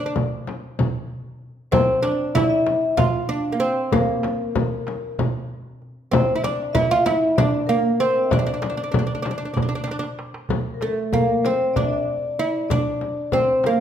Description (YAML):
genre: Turkish makam ensemble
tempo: 192 BPM (eighths)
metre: 7/8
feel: straight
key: D makam ussak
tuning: A4 = 440 Hz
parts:
  - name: oud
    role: melody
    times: 0.0-13.8 s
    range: A3 to F4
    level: -22 LUFS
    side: right 2 dB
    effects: none
  - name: vibraphone with medium hard mallets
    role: second line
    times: 0.0-13.8 s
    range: A4 to F5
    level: -26 LUFS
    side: left 5 dB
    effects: none
  - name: darbuka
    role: percussion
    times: 0.2-13.8 s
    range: none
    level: -27 LUFS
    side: right 3 dB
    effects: none
  - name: frame drum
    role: percussion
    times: 0.2-13.8 s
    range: none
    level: -25 LUFS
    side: left 5 dB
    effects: none
room: wet recital hall reverb, RT60 1.4 s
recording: minimal, uncompressed stereo recording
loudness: -19 LUFS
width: side -9 dB against mid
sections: 0.0-10.5 A section; 10.5-13.8 B section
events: drum fill 9.9-10.5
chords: none